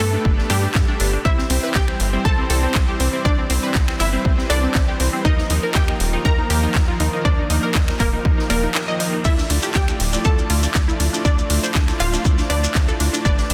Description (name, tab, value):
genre	progressive house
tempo	120 BPM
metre	4/4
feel	straight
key	unclear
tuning	A4 = 440 Hz
part	unison pluck	melody	0.0-13.5 s	G3 to Bb5	-28 LUFS	equal	tape echo
part	soft synth bell	second line	0.0-13.5 s	G4 to Bb5	-38 LUFS	equal	none
part	lush unison pad	sustained chords	0.0-13.5 s	Eb3 to D5	-34 LUFS	equal	none
part	tight sequencer bass	bass	0.0-13.5 s	D1 to G2	-24 LUFS	equal	tube saturation, sidechain pumping
part	house drum kit	drums	0.0-13.5 s	crash cymbal, finger snaps, handclaps, hi-hat, ride cymbal	-27 LUFS	equal	overdrive, sidechain pumping on cymbals, sidechain pumping on hats
part	soft-mallet drum kit	drums	0.0-13.5 s	ride cymbal, snare drum	-38 LUFS	equal	none
part	tight sequenced synth	arpeggios	0.1-13.5 s	C4 to Eb5	-30 LUFS	equal	chorus, vintage 12-bit sampler grit, sidechain pumping, tape echo
part	soft supersaw	stabs	0.1-13.5 s	F3 to E5	-29 LUFS	equal	sidechain pumping, tape echo
part	electronic kick drum	drums	0.2-13.4 s	none	-21 LUFS	equal	overdrive
part	shekere	percussion	9.2-13.5 s	none	-30 LUFS	equal	none
room	light reverb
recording	dense, heavily limited modern master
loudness	-19 LUFS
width	mono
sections	0.0-13.5 A section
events	none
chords	0.0 Gadd9; 1.2 C; 5.2 Ebsus2; 9.2 Dmadd9